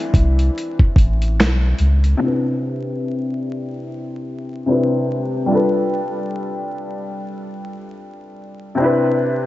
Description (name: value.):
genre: lo-fi hip hop.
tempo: 73 BPM.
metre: 4/4.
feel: swing 58% on 16ths.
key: C major.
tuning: A4 = 440 Hz.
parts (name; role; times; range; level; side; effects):
nylon-string guitar; melody; 0.0-1.4 s; E4; -33 LUFS; right 1 dB; none.
felt-muted upright piano; accompaniment; 0.0-9.5 s; C3 to B4; -20 LUFS; left 1 dB; cassette tape, low-pass filter.
dusty soul sampler-style drum kit; drums; 0.0-2.2 s; finger snaps, hi-hat, kick drum, snare drum; -16 LUFS; equal; none.
soft dub sub bass; bass; 0.1-2.1 s; A1 to Db2; -15 LUFS; equal; none.
room: moderate plate reverb, RT60 2.5 s.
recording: dreamy mix soaked in reverb, vinyl crackle, nothing above 7.8 kHz.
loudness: -16 LUFS.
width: side -16 dB against mid.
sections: 0.0-2.2 A section; 2.2-9.5 B section.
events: filter sweep on felt piano 2.2-9.5.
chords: 0.0 Cmaj7; 5.5 G7; 8.8 Cmaj7.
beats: 0.56 1.39 | 2.21 3.03 3.85 4.67 | 5.50 6.32 7.14 7.96 | 8.78.